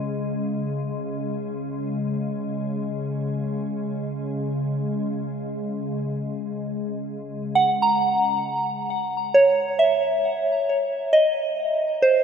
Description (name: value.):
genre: ambient.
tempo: free time.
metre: none.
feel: none.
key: C# dorian.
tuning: A4 = 440 Hz.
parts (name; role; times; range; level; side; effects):
organ-like drone; drone; 0.0-7.6 s; C#3 to G#3; -27 LUFS; left 1 dB; ensemble chorus, built-in reverb.
soft synth bell; arpeggios; 7.6-12.2 s; C5 to A#5; -18 LUFS; right 1 dB; chorus, ping-pong delay.
room: wet huge ambient reverb, RT60 6.9 s.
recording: none.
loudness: -21 LUFS.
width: side -7 dB against mid.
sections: 0.0-7.5 A section; 7.5-12.2 B section.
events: none.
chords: 0.0 C#5; 7.5 C#m; 11.1 Cm.